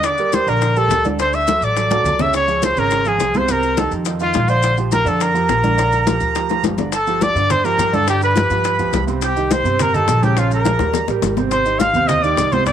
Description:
Afro-Cuban jazz; 209 BPM; 4/4; straight; Bb major, G minor from 6.9 s; A4 = 438 Hz
clear trumpet; melody; 0.0-12.7 s; F4 to F5; -18 LUFS; left 2 dB
accordion; second line; 0.0-12.7 s; F5 to F6; -24 LUFS; right 9 dB
warm upright piano; accompaniment; 0.0-12.7 s; C3 to D5; -22 LUFS; right 10 dB
upright bass; bass; 0.0-12.7 s; G1 to G2; -22 LUFS; equal
bongos; percussion; 0.0-12.7 s; -24 LUFS; left 13 dB
congas; percussion; 0.0-12.7 s; -24 LUFS; left 2 dB
maracas; percussion; 0.0-12.7 s; -32 LUFS; left 14 dB
moderate spring reverb, RT60 2.1 s; 1960s-style stereo with parts hard left and right; -14 LUFS; side -9 dB against mid
0.0-6.9 A section; 6.9-12.7 B section
drum fill 1.9-2.3, 6.5-6.9, 10.8-11.5
0.0 Ebmaj7; 1.2 Dadd9; 2.3 Dbmaj7; 3.5 Cm7; 4.1 Bbadd11; 4.6 Bb6; 6.9 Gm9; 8.1 G7; 9.2 Cm7; 10.4 Bbm7; 10.9 Eb6; 11.5 Abmaj7
| 0.04 0.33 0.61 0.90 | 1.19 1.48 1.76 2.05 | 2.34 2.62 2.91 3.20 | 3.48 3.77 4.06 4.35 | 4.63 4.92 5.21 5.49 | 5.78 6.07 6.35 6.64 | 6.93 7.21 7.50 7.79 | 8.07 8.36 8.65 8.93 | 9.22 9.51 9.79 10.08 | 10.37 10.65 10.94 11.23 | 11.52 11.80 12.09 12.38 | 12.66

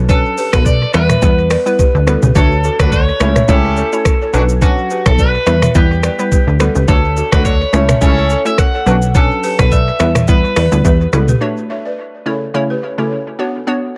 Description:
afrobeats; 106 BPM; 4/4; swing 55% on 16ths; E dorian; A4 = 443 Hz
plucky analog bass; bass; 0.0-11.3 s; B1 to E2; -17 LUFS; equal
electric guitar at the edge of break-up; melody; 0.1-11.1 s; F#4 to F#5; -21 LUFS; equal; dub echo
hollow square pluck; accompaniment; 0.1-14.0 s; C#3 to C#5; -22 LUFS; equal; chorus, dub echo
balafon; riff; 0.1-13.5 s; F#4 to E5; -24 LUFS; equal; dub echo
afro-pop drum kit; drums; 0.1-11.4 s; finger snaps, hi-hat, kick drum, rim click, shaker, toms; -16 LUFS; equal
clear horn section; second line; 2.8-9.0 s; F#3 to A4; -26 LUFS; equal
light reverb, digital ambience; echo-heavy mix; -13 LUFS; mono
0.0-11.4 A section; 11.4-14.0 B section
0.0 Bmadd9; 0.9 Em; 2.4 Dmaj7; 3.2 A/C#; 4.3 Bmadd9; 5.5 Em; 6.9 Dmaj7; 7.7 A/C#; 8.9 Bmadd9; 10.0 Em; 11.4 Dmaj7; 12.3 A/C#; 13.4 Bmadd9
| 0.09 0.66 1.22 1.79 | 2.35 2.92 3.49 4.05 | 4.62 5.18 5.75 6.32 | 6.88 7.45 8.01 8.58 | 9.15 9.71 10.28 10.84 | 11.41 11.98 12.54 13.11 | 13.67

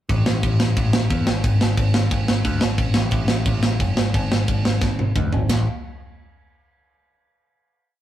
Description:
punk rock; 178 BPM; 4/4; straight; A4 = 440 Hz
growling picked electric bass; bass; 0.1-5.7 s; F#1 to E2; -21 LUFS; equal; overdrive
tight metal drum kit; drums; 0.1-5.6 s; crash cymbal, kick drum, ride cymbal, snare drum, toms; -20 LUFS; right 1 dB
light reverb; rough rehearsal-room recording; -18 LUFS; side -12 dB against mid
0.1-5.5 riff; 5.5-6.9 final note
drum fill 4.8-5.5
| 0.09 0.43 0.77 1.10 | 1.44 1.78 2.12 2.46 | 2.79 3.13 3.47 3.81 | 4.14 4.48 4.82 5.16 | 5.50

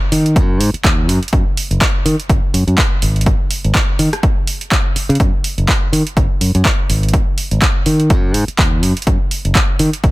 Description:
filtered disco house; 124 BPM; 4/4; swing 57% on 16ths; A4 = 439 Hz
modern bright fingered electric bass; bass; 0.1-10.1 s; F#1 to D#3; -14 LUFS; equal; sidechain pumping
punchy analog drum machine; drums; 0.1-10.1 s; handclaps, hi-hat, rim click; -19 LUFS; right 1 dB; overdrive, sidechain pumping on hats, sidechain pumping on cymbals
electronic kick drum; drums; 0.4-10.1 s; -15 LUFS; equal; overdrive
little or no reverb; -12 LUFS; side -19 dB against mid
0.0-10.1 A section
0.36 0.84 | 1.33 1.81 2.30 2.78 | 3.26 3.75 4.23 4.72 | 5.20 5.68 6.17 6.65 | 7.13 7.62 8.10 8.59 | 9.07 9.55 10.04

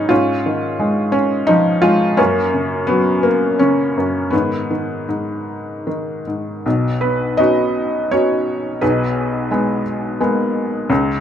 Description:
classical, lyrical solo piano; 74-88 BPM; 3/4; rubato; G# dorian, B major from 6.7 s; A4 = 441 Hz
felt-muted upright piano; solo; 0.0-11.2 s; B1 to D#5; -15 LUFS; equal
moderate studio reverb, RT60 0.8 s; dark, warm production; -15 LUFS; side -9 dB against mid
0.0-6.7 A section; 6.7-11.2 B section
0.1 C#add9/G#; 2.2 F#; 4.3 G#m; 6.7 Badd9; 8.8 G#madd9/B
| 0.10 0.79 1.48 | 2.18 2.89 3.61 | 4.33 5.07 5.86 | 6.65 7.39 8.12 | 8.82 9.51 10.21 | 10.90

